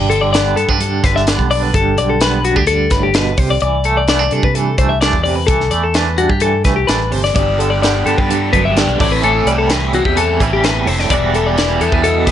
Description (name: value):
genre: math rock and midwest emo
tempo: 128 BPM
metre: 4/4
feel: straight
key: G major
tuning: A4 = 440 Hz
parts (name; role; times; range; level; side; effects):
- twangy electric guitar; accompaniment; 0.0-12.3 s; E2 to F#4; -19 LUFS; right 8 dB; tremolo
- twelve-string electric guitar; arpeggios; 0.0-12.3 s; F#4 to E5; -16 LUFS; left 6 dB; none
- fingered electric bass; bass; 0.0-12.3 s; E1 to C3; -19 LUFS; equal; none
- crisp fusion drum kit; drums; 0.1-12.3 s; hi-hat, kick drum, snare drum; -18 LUFS; equal; none
- biting overdriven guitar; riff; 7.3-12.3 s; G2 to G4; -19 LUFS; right 1 dB; phaser
room: light reverb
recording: nothing above 10.5 kHz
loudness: -12 LUFS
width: side -10 dB against mid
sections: 0.0-12.3 A section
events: none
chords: 0.0 Gadd9; 3.4 C69; 7.4 G69; 9.0 Am9; 11.1 Em9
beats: 0.33 0.80 1.27 | 1.74 2.21 2.67 3.14 | 3.61 4.08 4.55 5.01 | 5.48 5.95 6.42 6.89 | 7.36 7.82 8.29 8.76 | 9.23 9.70 10.16 10.63 | 11.10 11.57 12.04